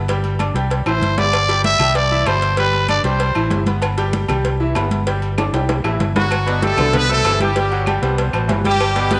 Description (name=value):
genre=latin, salsa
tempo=193 BPM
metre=4/4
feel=straight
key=G major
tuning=A4 = 440 Hz
part: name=bright upright piano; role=accompaniment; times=0.0-9.2 s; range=B2 to D6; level=-26 LUFS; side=equal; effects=none
part: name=fingered electric bass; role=bass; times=0.0-9.2 s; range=G1 to C2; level=-23 LUFS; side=equal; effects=none
part: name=agogo bells and timbales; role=percussion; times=0.1-9.2 s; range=none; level=-29 LUFS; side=equal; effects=none
part: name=congas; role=percussion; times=0.1-9.2 s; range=none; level=-28 LUFS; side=equal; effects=none
part: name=cowbell and bongos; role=percussion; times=0.1-9.2 s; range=none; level=-29 LUFS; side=equal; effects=none
part: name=claves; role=percussion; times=0.4-9.0 s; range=none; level=-35 LUFS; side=equal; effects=none
part: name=growling trumpet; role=melody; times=0.9-3.6 s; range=B4 to E5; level=-20 LUFS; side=equal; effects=none
part: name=bright horn section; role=melody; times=6.2-9.2 s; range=F#3 to B4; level=-21 LUFS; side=equal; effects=none
part: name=clear trombone section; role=second line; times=6.5-9.1 s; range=B2 to G3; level=-28 LUFS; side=equal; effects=none
room=moderate echo chamber reverb, RT60 2.0 s, small room ambience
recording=nothing above 10.8 kHz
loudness=-17 LUFS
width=mono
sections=0.0-6.3 A section; 6.3-9.2 B section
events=drum fill 0.9-1.3, 5.4-6.3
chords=0.1 G5; 0.7 Cmaj7; 1.3 G; 2.0 Cmaj7; 2.6 G; 3.2 Cmaj7; 3.8 G; 4.4 Cmaj7; 5.1 G5; 5.7 Cmaj7; 6.3 Gmaj7; 6.9 Cmaj7